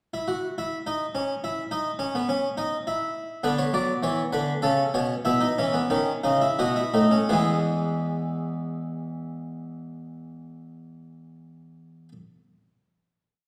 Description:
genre	classical, baroque-style 3-part fugue for harpsichord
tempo	80-106 BPM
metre	3/4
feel	straight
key	E major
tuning	A4 = 436 Hz
part	harpsichord	solo	0.1-12.1 s	E2 to E5	-26 LUFS	equal	none
room	wet recital hall reverb, RT60 1.5 s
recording	heard from further back in the room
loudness	-26 LUFS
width	mono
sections	0.0-7.3 exposition; 7.3-11.7 final chord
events	slowing down 2.6-7.3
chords	0.0 N.C.; 3.4 E5/D; 4.6 A/C#; 5.2 E5/B; 6.6 B7; 7.3 E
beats	| 0.00 0.58 1.16 | 1.73 2.30 2.87 | 3.44 4.02 4.62 | 5.24 5.89 6.57 | 7.29 8.03 8.77 | 9.52 10.26 11.00

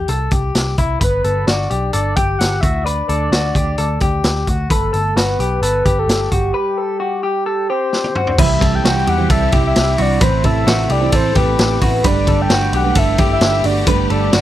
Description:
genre	jangly indie pop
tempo	131 BPM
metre	4/4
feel	straight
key	G major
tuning	A4 = 440 Hz
part	electric guitar through a small old amp	arpeggios	0.0-14.4 s	E4 to B4	-22 LUFS	left 4 dB	slapback echo
part	vintage muted picked electric bass	bass	0.0-14.4 s	G1 to E2	-19 LUFS	equal	none
part	raw garage drum kit	drums	0.1-14.4 s	crash cymbal, hi-hat, kick drum, ride cymbal, snare drum, toms	-18 LUFS	equal	none
part	soft octave-layered synth lead	melody	1.0-14.4 s	G4 to G5	-20 LUFS	equal	chorus, slapback echo
part	fingerpicked steel-string acoustic guitar	accompaniment	8.4-14.4 s	A2 to C5	-21 LUFS	right 10 dB	none
part	rich studio string section	sustained chords	8.4-14.4 s	C3 to A4	-27 LUFS	equal	none
room	little or no reverb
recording	dry, close 1970s-style studio recording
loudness	-13 LUFS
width	side -13 dB against mid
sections	0.0-8.4 A section; 8.4-14.4 B section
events	break 6.5-8.4; drum fill 7.9-8.4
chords	0.0 C; 1.0 Gadd9; 2.6 D; 4.7 Gadd9; 6.5 C5; 8.4 C; 10.2 Am; 12.0 Gadd9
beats	0.09 0.55 | 1.01 1.47 1.94 2.40 | 2.86 3.32 3.78 4.24 | 4.70 5.16 5.62 6.08 | 6.54 7.00 7.46 7.92 | 8.38 8.84 9.30 9.76 | 10.21 10.67 11.13 11.59 | 12.04 12.50 12.96 13.41 | 13.87 14.33

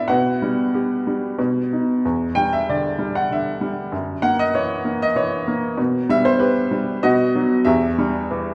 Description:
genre	classical, lyrical solo piano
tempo	96 BPM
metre	3/4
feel	rubato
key	E minor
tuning	A4 = 444 Hz
part	clear upright piano	solo	0.0-8.5 s	E2 to G5	-20 LUFS	equal	none
room	wet concert hall reverb, RT60 1.8 s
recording	recorded in a church or concert hall, faint mains hum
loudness	-20 LUFS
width	mono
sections	0.0-8.5 A section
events	none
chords	0.1 Gmaj7/B; 1.4 B; 2.0 Em7; 3.9 F#7; 5.8 Cmaj7/B; 7.0 B; 7.7 Em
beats	| 0.09 0.73 1.39 | 2.05 2.69 3.31 | 3.93 4.55 5.17 | 5.79 6.41 7.03 | 7.66 8.29

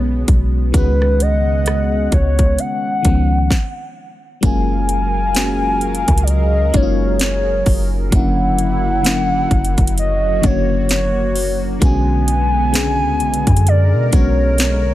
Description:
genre	contemporary R&B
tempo	65 BPM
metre	4/4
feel	swing 58% on 16ths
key	F# major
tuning	A4 = 440 Hz
part	hollow clarinet-like synth lead	melody	0.0-14.9 s	B4 to G#5	-20 LUFS	equal	chorus, digital delay
part	FM electric piano	accompaniment	0.0-14.9 s	C#3 to G#4	-22 LUFS	left 3 dB	chorus, phaser
part	warm analog pad	sustained chords	0.0-14.9 s	B2 to F#5	-24 LUFS	right 1 dB	chorus, sidechain pumping
part	soft 808-style bass	bass	0.0-14.9 s	F#1 to B2	-17 LUFS	equal	none
part	trap drum kit	drums	0.3-14.8 s	hi-hat, kick drum, rim click, snare drum	-16 LUFS	equal	none
room	little or no reverb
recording	none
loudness	-13 LUFS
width	side -14 dB against mid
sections	0.0-4.4 A section; 4.4-14.9 B section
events	stop 3.5-4.4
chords	0.0 Bm6; 0.7 C#7sus4; 4.4 F#maj9; 8.1 F#7b13; 11.8 Bm6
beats	| 0.74 1.66 2.58 3.51 | 4.43 5.35 6.28 7.20 | 8.12 9.05 9.97 10.89 | 11.82 12.74 13.66 14.59

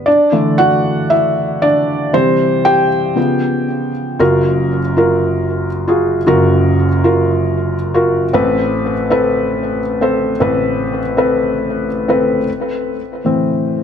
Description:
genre	pop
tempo	116 BPM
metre	4/4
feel	straight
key	unclear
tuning	A4 = 440 Hz
part	felt-muted upright piano	solo	0.0-13.8 s	F#1 to G5	-12 LUFS	equal	digital delay
room	moderate large studio reverb, RT60 1.2 s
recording	none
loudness	-12 LUFS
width	side -8 dB against mid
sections	0.0-4.2 A section; 4.2-12.5 B section; 12.5-13.8 C section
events	felt piano solo 0.0-4.2, 12.5-13.8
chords	0.1 Dsus2; 2.1 C; 3.2 C#7; 4.2 F#maj7; 8.3 Amadd9; 12.5 Am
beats	| 0.07 0.58 1.10 1.62 | 2.13 2.65 3.17 3.69 | 4.20 4.72 5.24 5.75 | 6.27 6.79 7.30 7.82 | 8.34 8.86 9.37 9.89 | 10.41 10.92 11.44 11.96 | 12.47 12.99 13.51

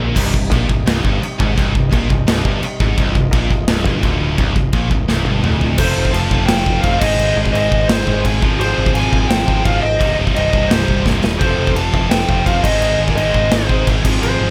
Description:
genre	heavy metal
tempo	171 BPM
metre	4/4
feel	straight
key	C minor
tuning	A4 = 440 Hz
part	high-gain distorted guitar	riff	0.0-14.5 s	C2 to Ab3	-26 LUFS	equal	distortion
part	scooped high-gain guitar	riff	0.0-14.5 s	C2 to Ab3	-26 LUFS	equal	distortion
part	growling picked electric bass	bass	0.0-14.5 s	C1 to Bb1	-22 LUFS	equal	overdrive
part	pipe organ, principal chorus	sustained chords	0.2-14.5 s	C3 to A4	-31 LUFS	equal	none
part	heavy high-gain guitar	riff	0.2-14.5 s	C2 to Ab4	-28 LUFS	equal	distortion
part	big rock drum kit	drums	0.2-14.3 s	china cymbal, crash cymbal, kick drum, snare drum, toms	-20 LUFS	equal	none
part	high-gain lead guitar	melody	5.8-14.5 s	C5 to A5	-22 LUFS	equal	distortion
part	high-gain lead guitar	second line	5.8-14.5 s	G4 to F5	-31 LUFS	equal	distortion
room	small room ambience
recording	faint mains hum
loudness	-16 LUFS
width	mono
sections	0.2-5.8 A section; 5.8-14.5 B section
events	drum fill 0.0, 5.1-5.8, 11.1-11.4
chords	0.2 Cm; 5.8 F; 7.0 Ab; 8.4 Fm/Ab; 10.0 Cm; 11.4 F; 12.6 Ab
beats	| 0.16 0.51 0.86 1.22 | 1.57 1.92 2.27 2.63 | 2.98 3.33 3.68 4.03 | 4.38 4.74 5.09 5.44 | 5.79 6.14 6.49 6.84 | 7.19 7.54 7.89 8.25 | 8.60 8.95 9.30 9.65 | 10.00 10.35 10.70 11.05 | 11.40 11.76 12.11 12.46 | 12.81 13.17 13.52 13.87 | 14.22

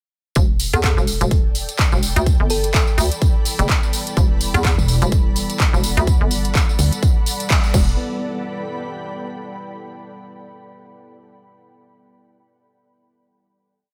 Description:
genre	bass house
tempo	126 BPM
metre	4/4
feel	swing 58% on 16ths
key	E minor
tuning	A4 = 439 Hz
part	deep dark ambient pad	sustained chords	2.7-8.0 s	G3 to B4	-34 LUFS	equal	chorus, built-in reverb, sidechain pumping
part	hollow knocking FM bass	bass	0.4-8.0 s	E1 to E2	-22 LUFS	equal	tube saturation, sidechain pumping
part	big-room dance drum kit	drums	0.4-7.8 s	crash cymbal, handclaps, hi-hat	-26 LUFS	equal	studio reverb
part	electronic kick drum	drums	0.4-7.8 s	none	-19 LUFS	equal	studio reverb
part	tambourine	percussion	0.4-8.0 s	none	-31 LUFS	equal	none
part	ethereal airy pad	texture	1.4-9.8 s	A4 to B5	-34 LUFS	equal	ensemble chorus, built-in reverb, sidechain pumping
part	thumb-piano-like synth pluck	melody	0.7-2.9 s	A4	-30 LUFS	equal	chorus, digital delay
part	pulsing pluck wobble bass	bass	4.8-6.9 s	E1 to D2	-18 LUFS	equal	chorus, tube saturation, sidechain pumping
room	little or no reverb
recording	none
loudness	-18 LUFS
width	mono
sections	0.4-8.0 drop; 8.0-9.9 final chord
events	drop 0.4-8.0; band accent 7.5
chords	0.4 Em; 8.0 A9sus4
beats	| 0.36 0.83 1.31 1.79 | 2.26 2.74 3.22 3.69 | 4.17 4.64 5.12 5.60 | 6.07 6.55 7.03 7.50 | 7.98 8.45 8.93 9.41

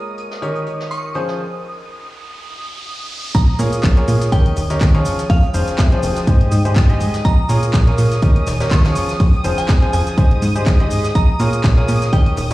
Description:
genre	piano house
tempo	123 BPM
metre	4/4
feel	swing 56% on 16ths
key	Bb dorian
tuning	A4 = 439 Hz
part	analog string pad	sustained chords	0.0-12.5 s	Eb6	-30 LUFS	right 1 dB	ensemble chorus, sidechain pumping
part	clear grand piano	riff	0.0-12.5 s	Eb3 to Eb5	-22 LUFS	left 1 dB	sidechain pumping, digital delay
part	riser	sound effects	1.0-3.3 s	none	-33 LUFS	right 2 dB	none
part	warbly tape-like pad	texture	0.0-12.5 s	F4 to Ab5	-38 LUFS	left 2 dB	none
part	jazz brush drum kit	drums	0.2-12.5 s	hi-hat, snare drum	-34 LUFS	equal	high-pass filter on hats, low-pass filter on hats, high-pass filter on snare, low-pass filter on snare, high-pass filter on room, low-pass filter on room
part	glassy synth bell	melody	0.9-12.3 s	F5 to Db6	-28 LUFS	right 2 dB	chorus, digital delay
part	plucky analog bass	bass	3.3-12.5 s	Eb1 to Bb2	-17 LUFS	equal	sidechain pumping
part	electronic kick drum	drums	3.3-12.2 s	none	-13 LUFS	equal	overdrive
part	house drum kit	drums	3.3-12.5 s	handclaps, hi-hat, shaker	-29 LUFS	equal	overdrive
room	studio reverb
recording	played on a big sound system in a bare room, stone room reverb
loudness	-13 LUFS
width	side -17 dB against mid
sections	0.0-3.3 A section; 3.3-12.5 B section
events	riser 1.0-3.3; break 1.4-3.3; drop 3.3-12.5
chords	0.4 Eb7; 1.2 Dbmaj7/F; 2.4 N.C.; 3.3 Bbm7; 4.3 Eb7; 5.1 Dbmaj7/F; 6.3 Abmaj7; 7.2 Bbm7; 8.2 Eb7; 9.0 Dbmaj7/F; 10.2 Abmaj7; 11.2 Bbm7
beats	0.42 0.91 | 1.40 1.88 2.37 2.86 | 3.35 3.83 4.32 4.81 | 5.30 5.79 6.27 6.76 | 7.25 7.74 8.22 8.71 | 9.20 9.69 10.18 10.66 | 11.15 11.64 12.13

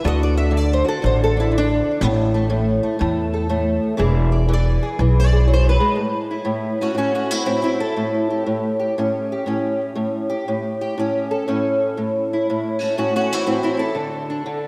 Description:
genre	acoustic country blues, solo or duo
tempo	120 BPM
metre	4/4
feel	swing 66% on 8ths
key	A mixolydian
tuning	A4 = 440 Hz
part	fingerpicked old ladder-braced acoustic guitar	melody	0.0-14.7 s	A2 to E5	-22 LUFS	equal	analog chorus, delay
part	upright bass	bass	0.0-5.8 s	E1 to E2	-20 LUFS	equal	none
room	wet lush hall reverb, RT60 2.9 s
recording	dreamy mix soaked in reverb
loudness	-20 LUFS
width	mono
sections	0.0-6.0 A section; 6.0-14.7 B section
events	steel-string acoustic guitar solo 0.0-6.0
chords	0.0 D; 2.0 A5; 4.0 E7; 6.0 A7; 14.0 D5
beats	| 0.04 0.54 1.03 1.53 | 2.02 2.52 3.01 3.50 | 4.00 4.49 4.99 5.49 | 5.98 6.48 6.98 7.48 | 7.97 8.47 8.97 9.47 | 9.97 10.47 10.97 11.47 | 11.97 12.47 12.97 13.46 | 13.96 14.46

